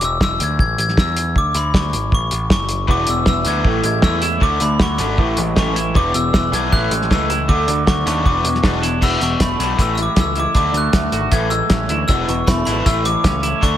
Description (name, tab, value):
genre	indie rock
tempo	156 BPM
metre	4/4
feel	straight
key	A major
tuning	A4 = 443 Hz
part	glockenspiel with brass mallets	melody	0.0-13.8 s	B5 to G#6	-20 LUFS	left 2 dB	slapback echo
part	growling picked electric bass	bass	0.0-13.8 s	E1 to E2	-22 LUFS	equal	overdrive
part	cloth-damped thuddy drum kit	drums	0.0-13.7 s	crash cymbal, hi-hat, kick drum, snare drum	-18 LUFS	equal	none
part	raw garage guitar	riff	2.9-13.8 s	A2 to D4	-23 LUFS	left 5 dB	overdrive, slapback echo
part	twangy electric guitar	riff	2.9-13.8 s	E2 to F#4	-24 LUFS	right 5 dB	analog chorus, slapback echo, analog delay
room	moderate lush hall reverb, RT60 1.9 s, studio reverb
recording	big arena sound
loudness	-15 LUFS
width	side -11 dB against mid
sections	0.0-9.0 A section; 9.0-13.8 B section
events	none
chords	0.0 E7; 0.6 A5; 1.4 G#dim; 2.1 A; 2.9 E5; 3.6 Amaj7; 4.4 D5; 5.2 Amaj7; 6.0 E5; 6.7 Amaj7; 7.5 D5; 8.3 E7; 9.0 E7sus4; 9.8 Amaj7; 10.6 D; 11.3 Amaj7; 12.1 E7sus4; 12.9 Amaj7